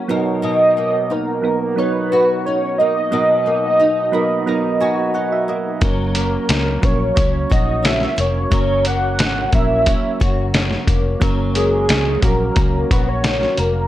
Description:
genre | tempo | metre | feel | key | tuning
indie pop, bedroom pop | 89 BPM | 4/4 | straight | B major | A4 = 441 Hz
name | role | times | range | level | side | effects
nylon-string guitar | accompaniment | 0.0-13.9 s | B2 to F#4 | -25 LUFS | left 3 dB | ensemble chorus, warbly pitch drift
soft electric-piano-like synth keys | accompaniment | 0.0-13.9 s | F#3 to B5 | -23 LUFS | right 4 dB | chorus, cassette tape
soft octave-layered synth lead | melody | 0.4-13.9 s | G#4 to F#5 | -18 LUFS | right 1 dB | ensemble chorus
vintage muted fingered electric bass | bass | 5.8-13.8 s | E#1 to C#2 | -21 LUFS | left 1 dB | none
lo-fi sampler-style drum kit | drums | 5.8-13.7 s | hi-hat, kick drum, snare drum | -18 LUFS | left 1 dB | none
room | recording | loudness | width
light reverb | dry, gritty hardware recording | -15 LUFS | side -13 dB against mid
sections
0.0-13.9 A section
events
synth keys fill 3.8-5.8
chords
0.1 Bmaj7; 5.8 F#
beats
| 0.43 1.10 1.78 2.45 | 3.13 3.80 4.47 5.15 | 5.82 6.50 7.17 7.85 | 8.52 9.19 9.87 10.54 | 11.22 11.89 12.56 13.24

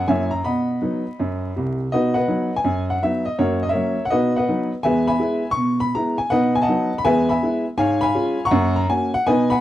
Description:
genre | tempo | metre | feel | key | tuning
jazz, stride piano | 163 BPM | 4/4 | swing 66% on 8ths | B major | A4 = 440 Hz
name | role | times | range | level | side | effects
clear upright piano | solo | 0.0-9.6 s | C2 to C#6 | -18 LUFS | equal | none
room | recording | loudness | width
light reverb | dry, close 1970s-style studio recording, vinyl crackle | -18 LUFS | side -13 dB against mid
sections
0.0-1.9 A section; 1.9-9.6 B section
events
none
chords
0.1 F#9; 0.5 B; 3.4 F#7; 4.1 B; 4.9 E; 6.3 B7; 7.1 E; 7.8 C#7/G#; 8.5 F#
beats
0.09 | 0.45 0.82 1.19 1.56 | 1.92 2.29 2.66 3.02 | 3.39 3.76 4.13 4.49 | 4.86 5.23 5.60 5.96 | 6.33 6.70 7.07 7.43 | 7.80 8.17 8.54 8.90 | 9.27

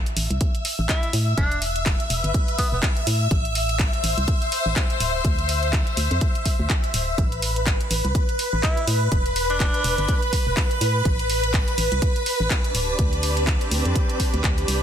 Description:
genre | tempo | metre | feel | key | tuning
piano house | 124 BPM | 4/4 | swing 57% on 16ths | A minor | A4 = 441 Hz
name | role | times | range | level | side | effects
string machine, violins | sustained chords | 0.0-14.8 s | B4 to E6 | -27 LUFS | equal | ensemble chorus, sidechain pumping
organ-like FM bass | bass | 0.0-14.8 s | D1 to A2 | -24 LUFS | equal | sidechain pumping
garage drum kit | drums | 0.1-14.8 s | handclaps, hi-hat | -27 LUFS | equal | studio reverb
electronic kick drum | drums | 0.4-14.6 s | none | -22 LUFS | equal | studio reverb
clear tenor saxophone | melody | 0.9-2.8, 8.6-10.2 s | B3 to E4 | -28 LUFS | equal | tape echo
dark chamber string section | texture | 2.1-14.8 s | C4 to C5 | -30 LUFS | left 1 dB | sidechain pumping
room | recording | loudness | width
light reverb, small room reverb | dense, heavily limited modern master | -19 LUFS | side -9 dB against mid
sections
0.0-14.8 A section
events
none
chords
0.0 A5; 1.4 E5; 3.1 Am; 5.0 D7(no3); 7.2 N.C.; 9.1 E7(no3); 10.8 N.C.; 12.7 D7(no3)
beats
0.41 0.89 | 1.38 1.86 2.34 2.83 | 3.31 3.79 4.28 4.76 | 5.25 5.73 6.21 6.70 | 7.18 7.67 8.15 8.63 | 9.12 9.60 10.09 10.57 | 11.05 11.54 12.02 12.50 | 12.99 13.47 13.96 14.44

